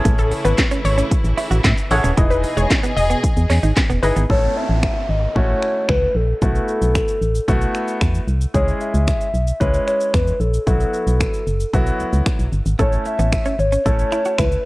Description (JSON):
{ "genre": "dance-pop", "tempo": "113 BPM", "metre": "4/4", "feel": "straight", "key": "unclear", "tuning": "A4 = 440 Hz", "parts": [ { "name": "clear baby grand piano", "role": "accompaniment", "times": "0.0-14.6 s", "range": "F#3 to D#5", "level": "-24 LUFS", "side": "equal", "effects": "sidechain pumping" }, { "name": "warm studio string section", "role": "sustained chords", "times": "0.0-4.3 s", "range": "B2 to D#5", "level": "-27 LUFS", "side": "left 1 dB", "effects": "sidechain pumping" }, { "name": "direct-recorded clean electric guitar", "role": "riff", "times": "0.0-4.2, 12.8-14.5 s", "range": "G#3 to F#4", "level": "-25 LUFS", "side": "right 4 dB", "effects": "lush chorus" }, { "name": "organ-like FM bass", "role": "bass", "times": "0.1-14.6 s", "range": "D#1 to A2", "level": "-18 LUFS", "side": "equal", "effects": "sidechain pumping" }, { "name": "house drum kit", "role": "drums", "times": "0.1-14.6 s", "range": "finger snaps, handclaps, hi-hat, kick drum, shaker, snare drum", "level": "-20 LUFS", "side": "equal", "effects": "none" }, { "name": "wide unison pluck", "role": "melody", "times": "0.2-4.1 s", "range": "A4 to F#5", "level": "-24 LUFS", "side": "left 2 dB", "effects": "sidechain pumping, tape echo" }, { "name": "hollow clarinet-like synth lead", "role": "melody", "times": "4.3-14.7 s", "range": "A4 to E5", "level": "-22 LUFS", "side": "left 1 dB", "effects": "chorus" }, { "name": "downlifter", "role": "sound effects", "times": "4.3-8.5 s", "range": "none", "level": "-32 LUFS", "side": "right 2 dB", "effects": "none" } ], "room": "digital ambience", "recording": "worn, warbling old tape, cassette tape, warbly pitch drift", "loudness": "-16 LUFS", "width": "side -20 dB against mid", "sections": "0.0-4.3 A section; 4.3-14.7 B section", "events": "drop 0.0-4.3", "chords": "0.0 Amaj7; 2.2 Emaj7; 4.3 A; 6.4 B7sus4; 8.5 C#m; 10.7 Esus2; 12.8 A" }